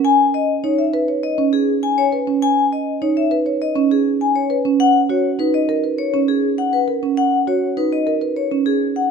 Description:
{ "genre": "classical, minimalist pattern music", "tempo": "101 BPM", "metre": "4/4", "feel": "straight", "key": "E lydian", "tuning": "A4 = 440 Hz", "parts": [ { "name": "vibraphone with medium hard mallets", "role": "melody", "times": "0.0-9.1 s", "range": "G#4 to G#5", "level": "-19 LUFS", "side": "left 9 dB", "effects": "none" }, { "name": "marimba with soft mallets", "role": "arpeggios", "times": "0.0-8.7 s", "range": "C#4 to C#5", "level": "-18 LUFS", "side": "right 6 dB", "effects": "none" } ], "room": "moderate recital hall reverb, RT60 1.5 s", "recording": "close, detailed microphones", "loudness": "-15 LUFS", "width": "side -6 dB against mid", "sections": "0.0-9.1 A section", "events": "none", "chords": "0.0 Emaj7 (rootless); 4.8 G#m9 (rootless)" }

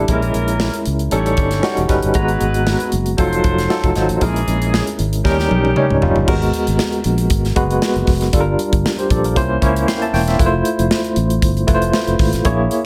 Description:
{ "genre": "polished 1980s jazz-funk pop", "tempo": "116 BPM", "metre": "4/4", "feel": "swing 54% on 16ths", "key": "unclear", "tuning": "A4 = 440 Hz", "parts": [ { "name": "barky tine electric piano", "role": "accompaniment", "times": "0.0-12.9 s", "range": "Gb3 to C6", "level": "-20 LUFS", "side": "equal", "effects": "overdrive, fast tremolo, subtle chorus" }, { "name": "fretless electric bass", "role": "bass", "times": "0.0-12.7 s", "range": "E1 to D#2", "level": "-21 LUFS", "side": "equal", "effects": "lush chorus" }, { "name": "warm horn section", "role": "second line", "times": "0.1-6.0 s", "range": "D#3 to C#5", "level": "-26 LUFS", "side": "equal", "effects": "none" }, { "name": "modern studio drum kit", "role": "drums", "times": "0.1-12.8 s", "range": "crash cymbal, hi-hat, kick drum, snare drum, toms", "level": "-22 LUFS", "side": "equal", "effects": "gated reverb" } ], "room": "light reverb, small room reverb", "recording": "none", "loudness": "-17 LUFS", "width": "mono", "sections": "0.0-6.3 A section; 6.3-12.9 B section", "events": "drum fill 5.2-6.3", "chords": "0.1 A#m7b5; 1.1 A7#11; 2.2 G#m9; 3.2 F7b9; 4.2 A#m7b5; 5.2 D#7; 6.3 G#m9; 8.3 Gm7; 9.4 C7b9; 10.4 Fmaj7" }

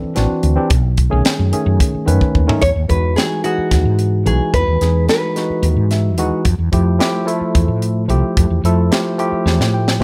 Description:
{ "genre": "electric jazz fusion", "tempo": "219 BPM (eighths)", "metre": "7/8", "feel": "straight", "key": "E major", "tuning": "A4 = 440 Hz", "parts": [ { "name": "barky tine electric piano", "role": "accompaniment", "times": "0.0-10.0 s", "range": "D#3 to G5", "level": "-21 LUFS", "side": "equal", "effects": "none" }, { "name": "woody fretless electric bass", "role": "bass", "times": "0.0-10.0 s", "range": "A1 to A2", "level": "-18 LUFS", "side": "equal", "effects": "none" }, { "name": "crisp fusion drum kit", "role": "drums", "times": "0.2-10.0 s", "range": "hi-hat, kick drum, snare drum, toms", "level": "-20 LUFS", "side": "equal", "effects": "none" }, { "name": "nylon-string guitar", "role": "melody", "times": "2.6-5.7 s", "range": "F#4 to C#5", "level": "-22 LUFS", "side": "equal", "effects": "none" } ], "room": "light reverb, small room ambience", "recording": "none", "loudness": "-16 LUFS", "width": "mono", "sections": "0.0-2.6 A section; 2.6-10.0 B section", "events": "drum fill 2.2-2.6, 9.5-10.0; tine electric piano fill 5.6-6.5, 9.5-10.0", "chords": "0.0 D9sus4; 0.7 B13; 2.6 Emaj9; 6.5 Fmaj9" }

